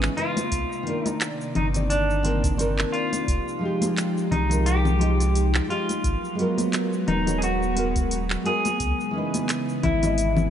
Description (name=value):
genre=sunset chillout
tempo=87 BPM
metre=4/4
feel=swing 56% on 16ths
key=unclear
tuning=A4 = 440 Hz
part: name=clean electric guitar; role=melody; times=0.0-10.5 s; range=D4 to Ab4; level=-28 LUFS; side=equal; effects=ping-pong delay
part: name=nylon-string guitar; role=accompaniment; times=0.0-10.5 s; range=Eb3 to Eb5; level=-29 LUFS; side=equal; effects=auto-pan, low-pass filter
part: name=airy breathy pad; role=sustained chords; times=0.0-10.5 s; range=C3 to D5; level=-29 LUFS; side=equal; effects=chorus
part: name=warm sub bass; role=bass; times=0.0-10.5 s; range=Eb1 to Db2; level=-25 LUFS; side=equal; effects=none
part: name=smooth R&B drum kit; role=drums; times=0.0-10.5 s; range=cabasa, congas, handclaps, hi-hat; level=-29 LUFS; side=left 2 dB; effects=none
part: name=congas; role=percussion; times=0.4-10.2 s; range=none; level=-33 LUFS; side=left 2 dB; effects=none
part: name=electronic kick drum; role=drums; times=0.5-10.0 s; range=none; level=-27 LUFS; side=equal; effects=none
room=moderate lush hall reverb, RT60 2.6 s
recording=nothing above 10.9 kHz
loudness=-21 LUFS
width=side -9 dB against mid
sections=0.0-10.5 A section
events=none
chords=0.0 Dbm9; 0.5 Cm9; 3.3 Fm9; 6.0 Abm9; 8.8 Dbm9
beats=| 0.53 1.22 1.91 2.59 | 3.28 3.97 4.66 5.35 | 6.04 6.73 7.42 8.11 | 8.80 9.49 10.18